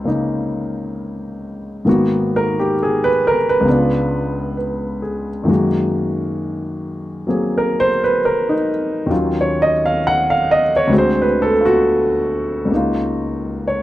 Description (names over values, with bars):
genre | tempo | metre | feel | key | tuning
jazz ballad | 66 BPM | 4/4 | swing 68% on 8ths | unclear | A4 = 441 Hz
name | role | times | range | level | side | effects
warm grand piano | solo | 0.0-13.8 s | Db2 to Gb5 | -15 LUFS | equal | none
room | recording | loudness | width
small room ambience | dry, close 1970s-style studio recording | -15 LUFS | side -15 dB against mid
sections
0.0-13.8 A section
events
none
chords
0.0 Dbmaj9; 1.9 Abm9; 3.7 Db7b9; 5.5 Gb69; 9.1 Ebm9; 10.9 D7#11; 12.7 Db69